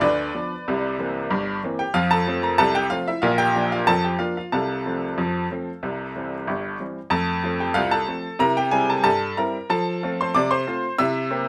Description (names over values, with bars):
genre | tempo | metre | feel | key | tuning
ragtime piano | 93 BPM | 2/4 | straight | F major | A4 = 443 Hz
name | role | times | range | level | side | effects
clear upright piano | solo | 0.0-11.5 s | G1 to E6 | -23 LUFS | equal | none
room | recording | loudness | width
moderate studio ambience, RT60 0.5 s | none | -23 LUFS | mono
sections
0.0-7.1 A section; 7.1-11.5 B section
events
none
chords
0.0 G7 (rootless); 0.7 C7; 1.9 F; 3.2 Bb; 4.5 F/C; 5.8 C; 7.1 F; 8.4 C7; 9.7 F